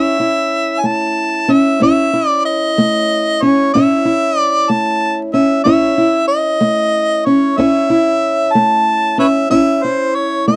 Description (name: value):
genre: acoustic country blues, solo or duo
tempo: 62 BPM (dotted quarters)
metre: 12/8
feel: straight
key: A major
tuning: A4 = 440 Hz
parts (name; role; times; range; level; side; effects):
- warm harmonica; melody; 0.0-10.6 s; B4 to A5; -17 LUFS; equal; none
- fingerpicked old ladder-braced acoustic guitar; accompaniment; 0.0-10.6 s; A2 to C#5; -17 LUFS; equal; none
room: little or no reverb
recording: dry, close 1970s-style studio recording, vinyl crackle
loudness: -14 LUFS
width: mono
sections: 0.0-10.6 A section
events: none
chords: 0.0 A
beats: 0.84 | 1.80 2.77 3.73 4.69 | 5.65 6.61 7.58 8.54 | 9.50 10.46